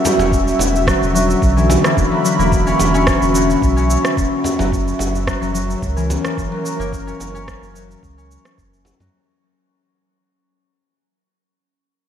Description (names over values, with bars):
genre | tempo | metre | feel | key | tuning
organic downtempo | 109 BPM | 4/4 | swing 53% on 16ths | unclear | A4 = 441 Hz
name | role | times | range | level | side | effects
warm analog pad | sustained chords | 0.0-9.1 s | D3 to B5 | -20 LUFS | right 1 dB | chorus, sidechain pumping
concert harp | arpeggios | 0.0-11.1 s | E3 to C#4 | -19 LUFS | left 3 dB | ping-pong delay
electronic shaker and rim click | drums | 0.1-9.1 s | none | -24 LUFS | right 1 dB | overdrive
frame drum | percussion | 0.1-9.1 s | none | -28 LUFS | right 2 dB | none
warm sub bass | bass | 0.2-9.1 s | E1 to F#2 | -20 LUFS | equal | sidechain pumping
electronic kick drum | drums | 0.3-8.7 s | none | -21 LUFS | equal | none
room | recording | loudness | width
moderate huge ambient reverb, RT60 7.7 s | dreamy mix soaked in reverb | -14 LUFS | side -9 dB against mid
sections
0.0-9.1 A section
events
fade-out 3.3-9.1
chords
0.3 Esus2; 4.7 F#7